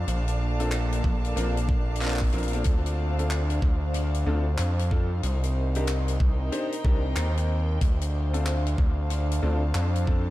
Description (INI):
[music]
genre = glitch hop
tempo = 93 BPM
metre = 4/4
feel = swing 64% on 16ths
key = D phrygian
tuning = A4 = 442 Hz
[part]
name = dark analog pad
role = sustained chords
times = 0.0-10.3 s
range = Bb3 to F5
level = -36 LUFS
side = left 2 dB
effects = chorus, sidechain pumping
[part]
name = gritty driven synth bass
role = bass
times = 0.0-10.3 s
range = Bb1 to F2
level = -25 LUFS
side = equal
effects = none
[part]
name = warm studio string section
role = texture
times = 0.0-10.3 s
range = Bb3 to Bb5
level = -36 LUFS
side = right 1 dB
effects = sidechain pumping
[part]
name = soft-mallet drum kit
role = drums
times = 0.1-10.0 s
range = handclaps, hi-hat, rim click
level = -37 LUFS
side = left 2 dB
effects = studio ambience
[part]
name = clear grand piano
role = stabs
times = 0.6-10.2 s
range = C4 to C5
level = -35 LUFS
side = left 1 dB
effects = sidechain pumping, dub echo
[part]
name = electronic kick drum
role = drums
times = 1.0-10.2 s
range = none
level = -24 LUFS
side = equal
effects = studio ambience
[sound]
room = studio reverb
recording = dark, warm production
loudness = -23 LUFS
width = side -16 dB against mid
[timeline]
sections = 0.0-10.3 A section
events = none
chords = 0.1 Bbmaj7; 2.7 Dm7; 5.2 Cm7; 7.8 Dm7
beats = | 0.07 0.72 1.36 2.01 | 2.65 3.30 3.94 4.59 | 5.23 5.88 6.52 7.17 | 7.81 8.46 9.10 9.75